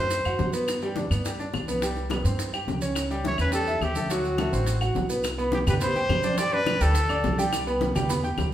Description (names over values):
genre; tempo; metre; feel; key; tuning
latin, salsa; 210 BPM; 4/4; straight; unclear; A4 = 439 Hz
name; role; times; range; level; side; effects
warm trumpet; melody; 0.0-0.5, 3.3-7.4 s; F#4 to D5; -28 LUFS; equal; none
bright upright piano; accompaniment; 0.0-8.5 s; F#3 to G6; -28 LUFS; right 1 dB; none
upright bass; bass; 0.0-8.5 s; A1 to G2; -28 LUFS; equal; none
bongos; percussion; 0.1-8.5 s; none; -35 LUFS; left 4 dB; none
congas; percussion; 0.1-8.5 s; none; -32 LUFS; right 1 dB; none
maracas; percussion; 0.1-8.5 s; none; -38 LUFS; right 3 dB; none
claves; percussion; 0.3-8.5 s; none; -38 LUFS; left 2 dB; none
room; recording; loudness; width
wet large studio reverb, RT60 1.2 s; band playing live in one room; -23 LUFS; side -12 dB against mid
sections
0.0-5.2 A section; 5.2-8.5 B section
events
none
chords
0.0 D7 (rootless); 0.7 G; 1.8 C5; 3.0 A7/C#; 4.1 D7; 5.2 C5; 6.4 Gadd9; 7.5 Cmaj7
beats
0.11 0.40 | 0.68 0.96 1.25 1.53 | 1.82 2.10 2.39 2.67 | 2.96 3.24 3.53 3.81 | 4.10 4.38 4.67 4.96 | 5.24 5.53 5.81 6.10 | 6.38 6.67 6.95 7.24 | 7.52 7.81 8.09 8.38